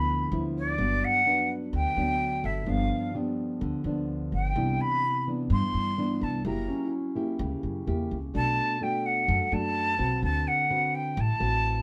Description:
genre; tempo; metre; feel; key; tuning
bossa nova; 127 BPM; 4/4; straight; G major; A4 = 440 Hz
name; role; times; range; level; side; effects
breathy jazz flute; melody; 0.0-11.8 s; D5 to C6; -30 LUFS; equal; none
nylon-string guitar; accompaniment; 0.0-11.8 s; G2 to B4; -33 LUFS; equal; none
upright bass; bass; 0.0-11.8 s; F#1 to G2; -32 LUFS; equal; none
warm grand piano; accompaniment; 1.3-10.4 s; C#4 to B4; -41 LUFS; equal; none
room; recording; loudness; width
moderate studio ambience, RT60 0.5 s; band playing live in one room; -28 LUFS; mono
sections
0.8-11.8 A section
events
none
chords
0.0 G6 (rootless); 0.8 Gmaj7; 2.7 G7; 4.6 Cmaj9; 6.4 F#7b9; 8.3 Bm7; 10.2 D6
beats
0.31 | 0.78 1.25 1.72 2.19 | 2.67 3.14 3.61 4.08 | 4.55 5.03 5.50 5.97 | 6.45 6.92 7.39 7.86 | 8.34 8.81 9.28 9.75 | 10.22 10.70 11.17 11.64

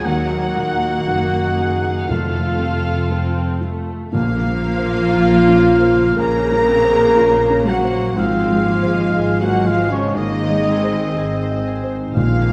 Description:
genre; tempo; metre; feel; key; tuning
cinematic, emotional film score for orchestra; 60 BPM; 4/4; rubato; Bb minor; A4 = 438 Hz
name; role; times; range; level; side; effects
muted studio violin section; melody; 0.0-12.1 s; C5 to Gb5; -34 LUFS; equal; none
mellow oboe; second line; 0.0-12.5 s; Db5 to Bb5; -28 LUFS; equal; none
muted studio violin section; second line; 0.0-12.5 s; Eb4 to Bb5; -31 LUFS; equal; none
warm clarinet; second line; 0.0-12.5 s; Ab3 to Gb4; -30 LUFS; equal; none
felt-muted upright piano; accompaniment; 0.0-12.5 s; Eb2 to Eb5; -27 LUFS; equal; none
muted studio viola section; accompaniment; 0.0-12.5 s; Db3 to C4; -28 LUFS; equal; none
concert harp; arpeggios; 0.0-12.5 s; Ab2 to C6; -32 LUFS; equal; none
muted studio cello section; bass; 0.0-12.5 s; Eb2 to Bb3; -26 LUFS; equal; none
muted studio double bass section; bass; 0.0-12.5 s; F1 to Eb2; -27 LUFS; equal; none
warm French horn section; sustained chords; 0.1-12.5 s; A3 to Bb4; -21 LUFS; equal; none
timpani; percussion; 2.1-5.6, 12.2-12.5 s; F2 to Bb2; -26 LUFS; equal; none
room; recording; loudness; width
wet concert hall reverb, RT60 2.1 s; none; -17 LUFS; mono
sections
0.0-4.1 A section; 4.1-12.5 B section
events
none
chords
0.1 Ebm; 2.1 F; 4.1 Bbmadd9; 8.2 Ab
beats
| 0.06 1.08 2.10 3.12 | 4.13 5.14 6.17 7.17 | 8.17 9.16 10.16 11.16 | 12.16

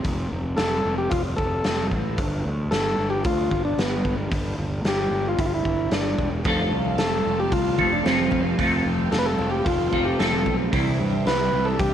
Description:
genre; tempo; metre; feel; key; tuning
psychedelic rock; 112 BPM; 4/4; straight; unclear; A4 = 440 Hz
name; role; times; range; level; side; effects
fuzz fingered electric bass; bass; 0.0-11.9 s; E1 to G2; -27 LUFS; equal; overdrive
raw garage drum kit; drums; 0.0-11.9 s; hi-hat, kick drum, snare drum; -27 LUFS; equal; none
combo organ; melody; 0.6-11.9 s; B3 to B4; -26 LUFS; left 1 dB; tape echo
bright studio string section; sustained chords; 6.5-11.9 s; C4 to A5; -34 LUFS; right 13 dB; none
clean electric guitar; riff; 6.5-11.9 s; C3 to A4; -24 LUFS; right 1 dB; phaser, double-tracked left and right
congas; percussion; 6.6-11.7 s; none; -35 LUFS; left 10 dB; none
room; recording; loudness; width
light reverb; 1960s-style stereo with parts hard left and right; -20 LUFS; side -9 dB against mid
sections
0.0-11.9 A section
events
none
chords
0.0 F; 2.2 G5; 6.5 F; 10.7 C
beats
| 0.05 0.59 1.12 1.65 | 2.19 2.72 3.25 3.79 | 4.32 4.86 5.39 5.92 | 6.46 6.99 7.52 8.06 | 8.59 9.12 9.66 10.19 | 10.73 11.26 11.79

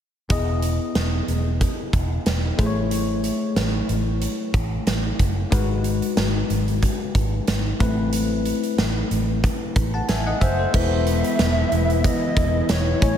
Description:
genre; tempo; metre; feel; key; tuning
1980s-style pop; 92 BPM; 4/4; swing 55% on 16ths; E major; A4 = 439 Hz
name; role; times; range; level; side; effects
bell-like tine electric piano; accompaniment; 0.3-13.2 s; G#3 to A5; -25 LUFS; left 3 dB; analog chorus
vintage muted fingered electric bass; bass; 0.3-13.2 s; E1 to A1; -24 LUFS; equal; none
big rock drum kit; drums; 0.3-13.2 s; crash cymbal, hi-hat, kick drum, snare drum; -23 LUFS; right 1 dB; none
hollow clarinet-like synth lead; melody; 10.4-13.2 s; C5 to E5; -25 LUFS; equal; chorus, diffuse ambient delay
string machine, violas; sustained chords; 10.7-13.2 s; C#3 to E4; -26 LUFS; equal; phaser, ensemble chorus
room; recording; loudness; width
moderate cathedral reverb, RT60 5.2 s; dreamy mix soaked in reverb; -19 LUFS; side -9 dB against mid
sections
0.3-10.7 A section; 10.7-13.2 B section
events
none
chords
0.3 Emaj7; 2.6 Amaj7; 5.5 G#m7; 7.8 Amadd9; 10.7 Emaj7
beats
| 0.30 0.95 1.61 2.26 | 2.91 3.56 4.22 4.87 | 5.52 6.17 6.83 7.48 | 8.13 8.78 9.43 10.09 | 10.74 11.39 12.04 12.70

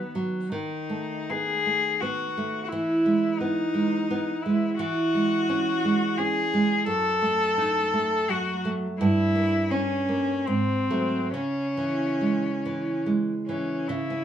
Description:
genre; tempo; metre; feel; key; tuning
romantic duo for cello and classical guitar; 66-89 BPM; 3/4; rubato; E major, C# minor from 4.8 s; A4 = 440 Hz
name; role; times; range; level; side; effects
clear cello; melody; 0.0-14.2 s; B3 to A4; -26 LUFS; left 2 dB; none
nylon-string guitar; accompaniment; 0.0-14.2 s; F#2 to D#4; -26 LUFS; right 3 dB; none
room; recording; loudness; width
light reverb; small room ambience; -23 LUFS; side -9 dB against mid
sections
0.0-13.9 A section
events
none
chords
0.0 B/D#; 0.5 B7/D#; 2.7 E; 4.8 C#m/E; 6.9 D#dim/F#; 9.0 Gdim7; 10.5 G#7b9; 11.3 C#m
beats
| 0.51 1.29 2.02 | 2.71 3.40 4.10 | 4.79 5.48 6.18 | 6.86 7.57 8.28 | 9.00 9.71 10.48 | 11.34 12.22 13.07 | 13.90

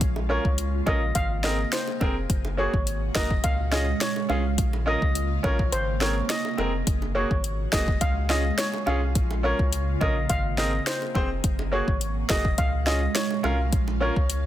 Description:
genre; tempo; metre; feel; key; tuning
dancehall; 105 BPM; 4/4; straight; Bb minor; A4 = 440 Hz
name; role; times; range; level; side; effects
ethereal airy pad; sustained chords; 0.0-14.5 s; Db3 to F4; -33 LUFS; right 3 dB; ensemble chorus, built-in reverb, phaser, sidechain pumping
warm sub bass; bass; 0.0-14.5 s; F1 to Db2; -27 LUFS; equal; none
afro-pop drum kit; drums; 0.0-14.4 s; hi-hat, kick drum, rim click, snare drum; -26 LUFS; equal; none
bongos; percussion; 0.2-14.0 s; none; -38 LUFS; right 3 dB; none
steel pan; melody; 0.3-14.1 s; C5 to F5; -29 LUFS; equal; tape echo
clear grand piano; accompaniment; 0.3-14.1 s; Bb3 to C5; -32 LUFS; right 1 dB; none
room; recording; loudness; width
digital ambience; dense, heavily limited modern master; -22 LUFS; side -12 dB against mid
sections
0.0-14.5 A section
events
kick muted 5.7-6.9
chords
0.0 Bbm; 1.2 Abadd9; 2.3 Gbadd9; 3.4 Db; 4.6 Bbm; 5.7 Abadd9; 6.9 Gbadd9; 8.0 Db; 9.2 Bbm; 10.3 Abadd9; 11.4 Gbadd9; 12.6 Db; 13.7 Bbm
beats
| 0.01 0.58 1.15 1.73 | 2.30 2.87 3.44 4.01 | 4.58 5.15 5.73 6.30 | 6.87 7.44 8.01 8.58 | 9.15 9.73 10.30 10.87 | 11.44 12.01 12.58 13.15 | 13.73 14.30

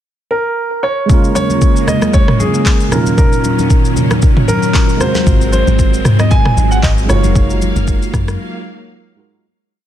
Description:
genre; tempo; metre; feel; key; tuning
amapiano; 115 BPM; 4/4; swing 55% on 16ths; unclear; A4 = 440 Hz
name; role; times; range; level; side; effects
warm concert grand piano; melody; 0.3-8.9 s; Ab4 to Ab5; -18 LUFS; right 1 dB; digital delay
tine electric piano; accompaniment; 1.1-9.5 s; Bb2 to Bb4; -19 LUFS; right 4 dB; ensemble chorus
string machine, violas; sustained chords; 1.1-9.4 s; Bb2 to F5; -19 LUFS; equal; ensemble chorus, sidechain pumping
deep house drum kit; drums; 1.1-8.4 s; handclaps, kick drum, rim click, shaker, snare drum, toms; -13 LUFS; equal; vintage 12-bit sampler grit
congas; percussion; 1.1-8.4 s; none; -22 LUFS; left 3 dB; none
deep log drum bass; bass; 5.3-8.4 s; F1 to Ab2; -14 LUFS; equal; none
room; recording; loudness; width
digital ambience; dense, heavily limited modern master; -10 LUFS; side -11 dB against mid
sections
0.0-1.1 pickup bar; 1.1-9.4 groove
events
fade-out 7.4-9.4; break 8.4-9.4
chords
0.0 N.C.; 1.1 Bbm7; 2.9 Ebm9/Bb; 5.0 Ab13; 7.1 Gbmaj13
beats
0.05 0.57 | 1.09 1.62 2.14 2.66 | 3.18 3.70 4.23 4.75 | 5.27 5.79 6.31 6.83 | 7.36 7.88 8.40 8.92

